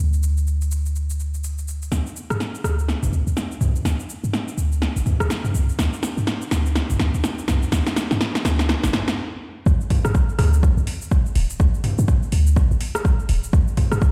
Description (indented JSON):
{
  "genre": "afro house",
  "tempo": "124 BPM",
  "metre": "4/4",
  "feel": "swing 59% on 16ths",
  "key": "unclear",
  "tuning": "A4 = 440 Hz",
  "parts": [
    { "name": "warm 808-style bass", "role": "bass", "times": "0.0-14.0 s", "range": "D1 to G2", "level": "-22 LUFS", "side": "equal", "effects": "sidechain pumping" },
    { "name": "deep house drum kit", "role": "drums", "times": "0.1-14.1 s", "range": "hi-hat, rim click, shaker, snare drum, toms", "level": "-26 LUFS", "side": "equal", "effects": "overdrive" },
    { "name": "electronic kick drum", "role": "drums", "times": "9.7-14.1 s", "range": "none", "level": "-21 LUFS", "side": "equal", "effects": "overdrive" }
  ],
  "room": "light reverb",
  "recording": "played on a big sound system in a bare room, stone room reverb",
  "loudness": "-21 LUFS",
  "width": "mono",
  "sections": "0.0-1.9 A section; 1.9-9.7 B section; 9.7-14.1 C section",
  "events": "build-up 1.9-9.7; drum fill 1.9-9.2; stop 9.2-9.7; drop 9.7-14.1",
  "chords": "none"
}